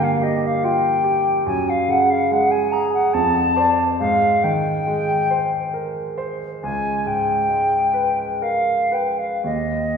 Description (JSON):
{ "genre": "classical, impressionist duo for flute and grand piano", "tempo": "56-74 BPM", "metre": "3/4", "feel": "rubato", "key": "unclear", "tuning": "A4 = 441 Hz", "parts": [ { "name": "silver concert flute", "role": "melody", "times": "0.0-10.0 s", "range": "Eb5 to Bb5", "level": "-19 LUFS", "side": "left 1 dB", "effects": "none" }, { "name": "clear concert grand piano", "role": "accompaniment", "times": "0.0-10.0 s", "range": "Db2 to D5", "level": "-22 LUFS", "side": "right 2 dB", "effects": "none" } ], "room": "wet scoring stage reverb, RT60 1.5 s", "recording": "heard from further back in the room", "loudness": "-17 LUFS", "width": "side -6 dB against mid", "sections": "0.0-10.0 A section", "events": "none", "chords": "0.0 Gm7; 1.5 Gbsus2; 3.1 F6; 4.0 Abmaj7; 6.6 Db5; 9.4 N.C.", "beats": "0.63 | 1.45 2.29 3.14 | 3.99 4.87 5.74 | 6.63 7.49 8.41 | 9.45" }